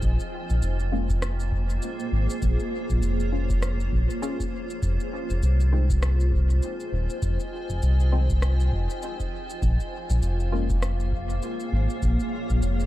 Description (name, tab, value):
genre	ambient dub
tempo	100 BPM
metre	4/4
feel	swing 58% on 16ths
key	unclear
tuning	A4 = 439 Hz
part	granular cloud pad	sustained chords	0.0-12.9 s	Bb3 to Ab5	-32 LUFS	equal	built-in reverb, vintage 12-bit sampler grit
part	round analog bass	bass	0.0-12.9 s	Eb1 to C2	-22 LUFS	equal	none
part	electronic cabasa and rim click	drums	0.0-12.9 s	none	-38 LUFS	left 1 dB	studio reverb, dub echo
part	electronic kick drum	drums	0.0-12.6 s	none	-29 LUFS	equal	studio reverb
part	wind-like tuned noise texture	texture	0.0, 10.2-12.9 s	F5	-42 LUFS	left 4 dB	built-in reverb
part	filtered dub chord stab	stabs	0.9-10.7 s	Eb3 to F4	-34 LUFS	left 2 dB	wide subtle chorus, dub echo
room	little or no reverb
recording	dark, warm production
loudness	-23 LUFS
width	side -15 dB against mid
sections	0.0-12.9 A section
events	none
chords	0.0 Bbm7; 4.8 Fm7; 9.6 Bbm7